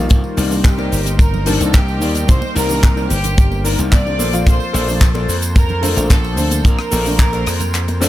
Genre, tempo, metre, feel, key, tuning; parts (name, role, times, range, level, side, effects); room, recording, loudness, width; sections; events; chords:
nu-disco, nu disco; 110 BPM; 4/4; straight; C dorian; A4 = 440 Hz
dark concert grand piano; accompaniment; 0.0-8.1 s; Eb3 to D5; -23 LUFS; left 1 dB
lush unison pad; sustained chords; 0.0-8.1 s; Bb3 to A5; -27 LUFS; equal; chorus, sidechain pumping
mellow electric guitar; riff; 0.0-8.1 s; Eb4 to D5; -25 LUFS; left 6 dB; lush chorus
glassy slap bass; bass; 0.0-8.1 s; G1 to F2; -19 LUFS; equal
kick drum; drums; 0.1-7.3 s; -12 LUFS; equal; studio reverb
tight funk drum kit; drums; 0.1-8.1 s; handclaps, hi-hat, rim click, shaker, snare drum; -23 LUFS; left 1 dB; studio reverb
congas and tambourine; percussion; 0.1-8.1 s; -30 LUFS; right 2 dB
warm studio violin section; melody; 0.7-8.1 s; G4 to D5; -23 LUFS; right 1 dB; ping-pong delay
small room ambience; -13 LUFS; side -14 dB against mid
0.0-8.1 A section
kick drops out 7.7-8.1
0.1 Cm9; 4.2 Bbmaj9